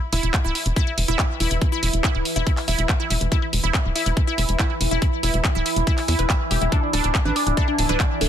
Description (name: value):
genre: psychedelic trance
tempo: 141 BPM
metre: 4/4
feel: straight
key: unclear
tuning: A4 = 440 Hz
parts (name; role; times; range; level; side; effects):
- overtone-sweeping drone; sustained chords; 1.0-8.3 s; E3 to E4; -28 LUFS; right 1 dB; chorus, built-in reverb, phaser, sidechain pumping
- wide unison pluck; riff; 0.1-8.3 s; D4 to E5; -26 LUFS; moving between left 3 dB and right 4 dB; auto-pan, sidechain pumping, ping-pong delay
- tight sequencer bass; bass; 0.1-8.3 s; D1 to E2; -22 LUFS; equal; none
- big-room dance drum kit; drums; 0.1-8.3 s; handclaps, hi-hat; -26 LUFS; equal; none
- electronic kick drum; drums; 0.3-8.1 s; none; -21 LUFS; equal; none
- overdriven synth lead; melody; 6.7-8.3 s; D4 to B4; -25 LUFS; equal; phaser, sidechain pumping, tape echo
room: little or no reverb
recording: dense, heavily limited modern master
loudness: -19 LUFS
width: side -9 dB against mid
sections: 0.0-8.3 A section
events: none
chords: 0.0 E5; 6.7 D5